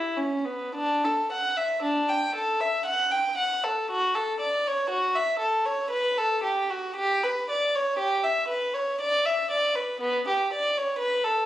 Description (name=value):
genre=classical, baroque-style suite movement for unaccompanied violin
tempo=58 BPM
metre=3/4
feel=uneven beats, rubato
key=D major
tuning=A4 = 441 Hz
part: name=warm violin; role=solo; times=0.0-11.5 s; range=B3 to G5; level=-24 LUFS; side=equal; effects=none
room=moderate stone room reverb, RT60 1.3 s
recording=recorded on a phone in the room, club reverb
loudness=-24 LUFS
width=side -13 dB against mid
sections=0.7-11.5 A section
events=none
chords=none